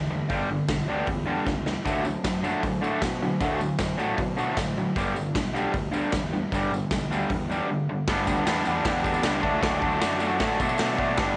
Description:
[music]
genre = garage rock duo or trio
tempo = 154 BPM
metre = 4/4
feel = straight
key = D major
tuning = A4 = 440 Hz
[part]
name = raw garage guitar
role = riff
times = 0.0-11.4 s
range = G2 to D4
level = -28 LUFS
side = equal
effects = overdrive
[part]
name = fuzz fingered electric bass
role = bass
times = 0.0-11.4 s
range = G1 to B2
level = -36 LUFS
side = equal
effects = overdrive, tube saturation
[part]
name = raw garage drum kit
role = drums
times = 0.3-11.3 s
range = hi-hat, kick drum, snare drum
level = -32 LUFS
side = equal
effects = none
[part]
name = tambourine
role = percussion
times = 1.9-10.9 s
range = none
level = -48 LUFS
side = equal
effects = none
[sound]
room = small room reverb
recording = nothing above 10.3 kHz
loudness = -26 LUFS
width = mono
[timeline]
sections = 0.0-8.1 A section; 8.1-11.4 B section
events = drum fill 1.5-1.9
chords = 0.0 G5; 1.9 D; 5.0 G; 9.4 D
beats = | 0.30 0.69 1.07 1.46 | 1.85 2.24 2.62 3.01 | 3.40 3.79 4.18 4.57 | 4.96 5.35 5.74 6.12 | 6.51 6.90 7.29 7.68 | 8.07 8.46 8.85 9.24 | 9.63 10.02 10.40 10.79 | 11.18

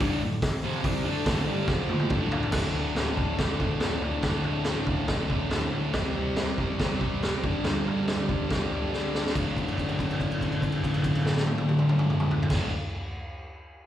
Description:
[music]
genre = garage rock duo or trio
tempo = 141 BPM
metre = 4/4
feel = straight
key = unclear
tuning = A4 = 440 Hz
[part]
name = fuzz guitar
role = riff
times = 0.0-12.7 s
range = D2 to D4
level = -27 LUFS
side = equal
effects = distortion, slapback echo
[part]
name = raw garage drum kit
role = drums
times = 0.0-12.6 s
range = crash cymbal, hi-hat, kick drum, snare drum, toms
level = -28 LUFS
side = equal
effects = none
[sound]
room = light reverb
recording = live gig heard through the venue's PA, recital hall reverb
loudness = -24 LUFS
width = side -11 dB against mid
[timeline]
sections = 0.0-2.5 A section; 2.5-9.3 B section; 9.3-12.8 C section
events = drum fill 1.7-2.5, 8.9-9.3; held note 9.3-12.5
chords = 0.0 D5; 1.7 F5; 2.1 D5; 5.9 C5; 7.4 G5; 9.3 D5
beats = 0.00 0.42 | 0.85 1.27 1.69 2.12 | 2.54 2.96 3.39 3.81 | 4.24 4.66 5.09 5.51 | 5.94 6.37 6.79 7.22 | 7.64 8.07 8.49 8.92 | 9.35 9.78 10.20 10.63 | 11.06 11.48 11.91 12.34

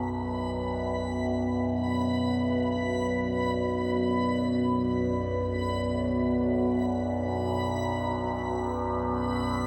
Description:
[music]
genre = dark ambient drone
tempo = free time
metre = none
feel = none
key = unclear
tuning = A4 = 440 Hz
[part]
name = dark analog pad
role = sustained chords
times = 0.0-9.7 s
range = B3 to D5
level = -31 LUFS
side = equal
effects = lush chorus, shimmer reverb
[part]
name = overtone-sweeping drone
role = drone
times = 0.0-9.7 s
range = B1 to F#2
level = -33 LUFS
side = equal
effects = chorus, built-in reverb
[part]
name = backwards swelling texture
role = texture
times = 0.0-9.7 s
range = B5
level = -39 LUFS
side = equal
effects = built-in reverb, shimmer reverb
[sound]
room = wet echo chamber reverb, RT60 2.3 s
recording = none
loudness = -28 LUFS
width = mono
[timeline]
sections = 0.0-9.7 A section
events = none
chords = 0.0 Bm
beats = free time

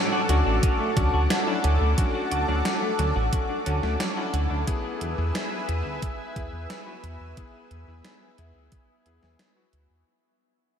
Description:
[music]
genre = synthwave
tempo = 89 BPM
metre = 4/4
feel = straight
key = unclear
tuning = A4 = 440 Hz
[part]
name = lush unison pad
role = sustained chords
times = 0.0-10.0 s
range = A4 to E6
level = -29 LUFS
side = equal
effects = chorus, phaser, sidechain pumping
[part]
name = bright electric grand piano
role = stabs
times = 0.0-10.0 s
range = B3 to G#4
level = -32 LUFS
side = left 3 dB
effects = low-pass filter, ping-pong delay
[part]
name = clean electric guitar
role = arpeggios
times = 0.1-4.6 s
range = F#3 to F#4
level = -33 LUFS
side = right 1 dB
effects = analog chorus, ping-pong delay
[part]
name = chorused synth bass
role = bass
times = 0.3-10.0 s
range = A1 to E2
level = -25 LUFS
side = equal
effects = sidechain pumping
[part]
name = gated 80s digital drum machine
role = drums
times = 0.3-9.9 s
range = hi-hat, snare drum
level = -31 LUFS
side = right 1 dB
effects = gated reverb, gated reverb snare, overdrive
[part]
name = electronic kick drum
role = drums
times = 0.6-8.9 s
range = none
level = -26 LUFS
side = equal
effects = overdrive
[sound]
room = moderate huge ambient reverb, RT60 8.2 s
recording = dreamy mix soaked in reverb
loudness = -22 LUFS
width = side -8 dB against mid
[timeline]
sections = 0.0-10.1 A section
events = fade-out 0.0-10.1; filter sweep on analog synth bass 0.0-10.1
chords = 0.0 Dmaj7; 4.7 E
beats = 0.63 1.30 | 1.98 2.65 3.33 4.00 | 4.67 5.35 6.02 6.70 | 7.37 8.04 8.72 9.39

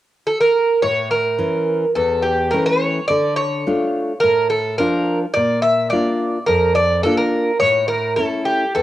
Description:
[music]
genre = greek folk, Greek bouzouki band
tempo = 106 BPM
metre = 4/4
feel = straight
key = A phrygian dominant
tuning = A4 = 440 Hz
[part]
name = Greek bouzouki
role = melody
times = 0.3-8.8 s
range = G4 to E5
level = -17 LUFS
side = right 1 dB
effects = cassette tape, plate reverb
[part]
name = nylon-string guitar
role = accompaniment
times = 0.8-8.8 s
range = E2 to F4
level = -20 LUFS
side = left 2 dB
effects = cassette tape, plate reverb
[sound]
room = moderate studio reverb, RT60 0.6 s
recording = home recording on cassette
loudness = -15 LUFS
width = side -14 dB against mid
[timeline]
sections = 0.8-8.8 A section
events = none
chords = 0.0 N.C.; 0.8 A; 3.1 Dm; 5.4 Bb; 7.6 A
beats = 0.27 | 0.83 1.40 1.96 2.53 | 3.09 3.66 4.22 4.79 | 5.36 5.92 6.49 7.05 | 7.62 8.19 8.75

